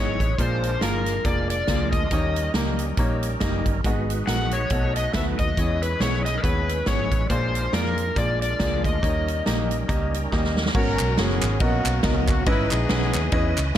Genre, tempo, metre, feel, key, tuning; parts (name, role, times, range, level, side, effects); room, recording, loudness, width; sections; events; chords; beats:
uptempo gospel; 139 BPM; 4/4; swing 57% on 8ths; G# minor; A4 = 439 Hz
overdriven slide guitar; melody; 0.0-9.4 s; A#4 to F#5; -28 LUFS; left 3 dB; tape echo
bright grand piano; accompaniment; 0.0-13.8 s; G#2 to F#5; -29 LUFS; left 2 dB
bright tonewheel organ; sustained chords; 0.0-13.8 s; B2 to D#5; -32 LUFS; right 4 dB; fast rotary speaker, chorus vibrato
vintage muted fingered electric bass; bass; 0.0-13.7 s; E#1 to E#2; -26 LUFS; equal
swinging big-band drum kit; drums; 0.2-13.8 s; crash cymbal, hi-hat, kick drum, ride cymbal, snare drum; -25 LUFS; right 1 dB
warm horn section; melody; 10.8-13.5 s; A#3 to B4; -27 LUFS; left 2 dB
group handclap; percussion; 11.0-13.7 s; -30 LUFS; right 3 dB
light reverb, small room ambience; -20 LUFS; side -11 dB against mid
0.0-10.8 A section; 10.8-13.8 B section
drum fill 10.3-10.8
0.4 A#7; 2.1 D#7; 3.8 G#m7; 4.7 B7; 5.6 E6; 7.3 A#7; 9.0 D#7; 10.8 G#m11; 12.5 C#m9/G#
| 0.39 0.82 1.25 1.68 | 2.12 2.55 2.98 3.41 | 3.85 4.28 4.71 5.14 | 5.57 6.01 6.44 6.87 | 7.30 7.73 8.16 8.60 | 9.03 9.46 9.89 10.32 | 10.75 11.18 11.61 12.04 | 12.47 12.90 13.33 13.76